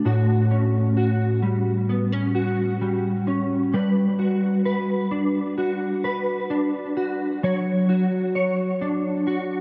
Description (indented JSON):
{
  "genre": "dream pop",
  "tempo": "65 BPM",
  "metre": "4/4",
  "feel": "straight",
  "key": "unclear",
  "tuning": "A4 = 440 Hz",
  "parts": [
    { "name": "mellow electric guitar", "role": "solo", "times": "0.0-9.6 s", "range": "A2 to C#5", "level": "-23 LUFS", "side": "equal", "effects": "ensemble chorus, tape echo" }
  ],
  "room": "moderate huge ambient reverb, RT60 5.3 s",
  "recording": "none",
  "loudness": "-23 LUFS",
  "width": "mono",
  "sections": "0.0-9.6 A section",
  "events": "none",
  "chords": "0.0 A13; 3.7 Gmaj7; 7.4 Dmaj7/F#"
}